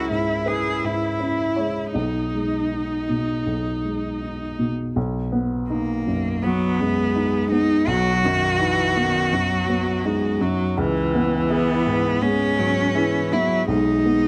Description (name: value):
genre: neoclassical piano and strings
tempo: 82 BPM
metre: 4/4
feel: rubato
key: B major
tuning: A4 = 439 Hz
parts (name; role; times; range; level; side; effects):
- rich cello; second line; 0.0-14.3 s; A#3 to G#4; -25 LUFS; equal; none
- dark baby grand piano; accompaniment; 0.0-14.3 s; B1 to D#5; -26 LUFS; equal; none
- warm viola; accompaniment; 0.0-14.3 s; D#3 to E4; -28 LUFS; equal; none
room: light reverb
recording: close, detailed microphones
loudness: -22 LUFS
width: mono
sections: 0.0-5.0 A section; 5.0-14.3 A section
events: none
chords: 0.0 C#m7; 1.9 G#m/B; 5.0 B; 10.8 C#m7; 13.7 G#m/B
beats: 0.46 1.19 | 1.94 2.71 3.46 4.21 | 4.96 5.69 6.43 7.16 | 7.88 8.61 9.33 10.05 | 10.78 11.50 12.22 12.95 | 13.69